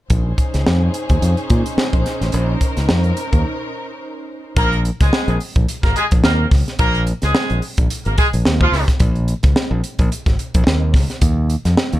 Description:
funk; 108 BPM; 4/4; swing 56% on 16ths; Bb minor; A4 = 441 Hz
warm studio string section; sustained chords; 0.1-4.5 s; Db4 to C5; -25 LUFS; equal
modern bright fingered electric bass; bass; 0.1-12.0 s; Ab1 to Bb2; -17 LUFS; equal
crisp fusion drum kit; drums; 0.1-12.0 s; hi-hat, kick drum, snare drum; -17 LUFS; equal
clear horn section; second line; 4.6-8.8 s; F3 to Bb4; -19 LUFS; equal
little or no reverb; dark, warm production; -14 LUFS; side -15 dB against mid
0.1-4.6 A section; 4.6-12.0 B section
break 3.5-4.6
0.1 Bbm11; 4.6 Bbm7; 11.2 Ebsus2

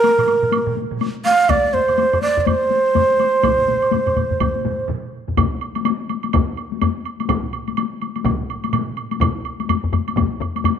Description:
japanese traditional, taiko drum ensemble; 124 BPM; 4/4; swing 60% on 16ths; A4 = 442 Hz
breathy mellow shakuhachi; melody; 0.0-4.9 s; Bb4 to F5; -16 LUFS; right 3 dB
solo taiko drums; percussion; 0.0-10.8 s; -24 LUFS; left 13 dB
woodblock; percussion; 0.0-10.8 s; -26 LUFS; right 10 dB
taiko ensemble; percussion; 0.2-8.9 s; -28 LUFS; right 6 dB
taiko ensemble; percussion; 1.5-10.8 s; -24 LUFS; left 3 dB
taiko ensemble; percussion; 1.5-10.3 s; -23 LUFS; equal
moderate echo chamber reverb, RT60 1.7 s; 1960s-style stereo with parts hard left and right; -17 LUFS; side -8 dB against mid
0.0-5.4 A section; 5.4-10.8 B section
break 4.9-5.4

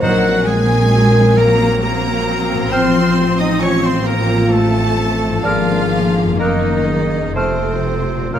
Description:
classical, slow romantic movement for symphony orchestra; 59-68 BPM; 3/4; rubato; A4 = 439 Hz
clear studio violin section; melody; 0.0-8.4 s; C5 to Eb6; -24 LUFS; left 2 dB
bright clarinet; second line; 0.0-8.4 s; Bb4 to Db5; -26 LUFS; right 1 dB
bright concert flute; second line; 0.0-8.4 s; F6 to Gb6; -25 LUFS; equal
clear oboe; second line; 0.0-8.4 s; C4 to Eb5; -26 LUFS; right 2 dB
rich studio violin section; second line; 0.0-8.4 s; C4 to Eb5; -27 LUFS; left 2 dB
rich symphonic viola section; accompaniment; 0.0-8.4 s; D3 to C4; -23 LUFS; right 1 dB
warm bassoon; accompaniment; 0.0-8.4 s; A3 to Eb4; -26 LUFS; right 3 dB
dark French horn section; sustained chords; 0.0-8.4 s; F4 to Bb4; -20 LUFS; left 3 dB
concert harp; arpeggios; 0.0-8.4 s; F2 to C5; -22 LUFS; left 6 dB
clear symphonic double bass section; bass; 0.0-8.4 s; F1 to Bb1; -19 LUFS; right 3 dB
rich symphonic cello section; bass; 0.0-8.4 s; C3 to Eb4; -20 LUFS; right 1 dB
timpani; percussion; 0.0-1.3 s; Bb2; -26 LUFS; right 1 dB
wet recital hall reverb, RT60 1.8 s; -13 LUFS; side -10 dB against mid
0.0-8.4 A section
0.0 Cm7b5/Bb; 2.7 F/A; 5.4 Bb7/Ab; 6.4 Ebm/Gb; 7.4 F

